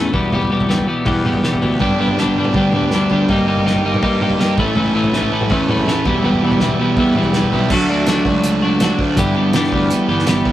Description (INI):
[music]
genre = indie rock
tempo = 163 BPM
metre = 4/4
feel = straight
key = G lydian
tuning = A4 = 437 Hz
[part]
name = twelve-string electric guitar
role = riff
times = 0.0-10.5 s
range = E2 to A4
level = -16 LUFS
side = left 1 dB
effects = none
[part]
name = fuzz picked electric bass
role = bass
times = 0.0-10.5 s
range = E1 to G2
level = -23 LUFS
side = right 1 dB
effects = overdrive
[part]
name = cloth-damped thuddy drum kit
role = drums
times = 0.1-10.5 s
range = crash cymbal, hi-hat, kick drum, snare drum, toms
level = -22 LUFS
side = right 1 dB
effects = none
[part]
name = sludgy distorted guitar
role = riff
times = 1.8-10.5 s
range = E3 to A4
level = -21 LUFS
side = right 6 dB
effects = overdrive
[sound]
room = moderate stone room reverb, RT60 1.3 s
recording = rough rehearsal-room recording, tube saturation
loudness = -14 LUFS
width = side -13 dB against mid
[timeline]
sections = 0.0-7.7 A section; 7.7-10.5 B section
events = none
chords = 0.1 Em; 1.8 G; 3.3 Eb/G; 4.6 A; 6.1 Em; 7.7 D; 9.2 G6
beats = | 0.33 0.70 1.07 1.44 | 1.81 2.18 2.55 2.92 | 3.29 3.66 4.03 4.40 | 4.76 5.13 5.50 5.87 | 6.24 6.61 6.97 7.34 | 7.71 8.08 8.44 8.81 | 9.17 9.54 9.90 10.27